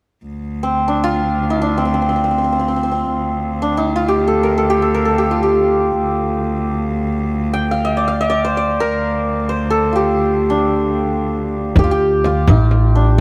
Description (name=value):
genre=Persian modal ensemble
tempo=free time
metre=none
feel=none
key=D dastgah shur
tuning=A4 = 440 Hz
part: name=clear cello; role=drone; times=0.3-11.8 s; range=D2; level=-23 LUFS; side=equal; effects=none
part: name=santur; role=melody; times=0.6-13.2 s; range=C4 to G5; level=-19 LUFS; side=equal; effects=none
part: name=upright bass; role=bass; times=11.8-13.2 s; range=A1 to D2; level=-16 LUFS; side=equal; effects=none
part: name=frame drum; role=percussion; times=11.8-13.2 s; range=none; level=-18 LUFS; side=equal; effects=none
room=light reverb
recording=none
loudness=-17 LUFS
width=mono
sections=0.3-11.8 A section; 11.8-13.2 B section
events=none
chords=none